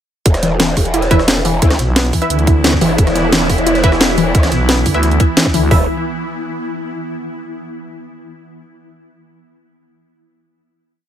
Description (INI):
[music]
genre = dark technical drum and bass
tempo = 176 BPM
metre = 4/4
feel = straight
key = unclear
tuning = A4 = 440 Hz
[part]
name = swarming drone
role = sustained chords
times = 1.6-5.9 s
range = E3 to E4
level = -21 LUFS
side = right 1 dB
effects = built-in reverb, sidechain pumping
[part]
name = growl bass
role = bass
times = 0.3-5.9 s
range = E1 to D2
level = -17 LUFS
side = equal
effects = chorus, overdrive
[part]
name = drum and bass drum kit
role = drums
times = 0.3-5.8 s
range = hi-hat, kick drum, toms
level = -13 LUFS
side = equal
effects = overdrive
[part]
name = drum and bass drum kit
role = drums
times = 0.3-5.6 s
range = hi-hat, rim click, snare drum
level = -16 LUFS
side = equal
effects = overdrive
[part]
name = jungle sampler-style drum kit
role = drums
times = 0.3-5.6 s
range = hi-hat, snare drum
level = -25 LUFS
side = equal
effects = overdrive, high-pass filter on hats, high-pass filter on snare
[part]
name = warbly dusty pluck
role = arpeggios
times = 0.4-5.9 s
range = E3 to E4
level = -19 LUFS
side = left 2 dB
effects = chorus, cassette tape, sidechain pumping, tape echo
[part]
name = filtered dub chord stab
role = stabs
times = 1.1-5.8 s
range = E4 to E5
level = -22 LUFS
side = right 2 dB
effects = chorus, tape echo
[part]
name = growling FM bass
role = bass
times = 1.8-5.7 s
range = B1 to D2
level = -15 LUFS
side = equal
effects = tube saturation
[sound]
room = digital ambience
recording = none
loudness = -11 LUFS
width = side -10 dB against mid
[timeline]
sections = 0.3-5.7 drop; 5.7-7.1 final chord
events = drop 0.3-5.7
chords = 0.3 E5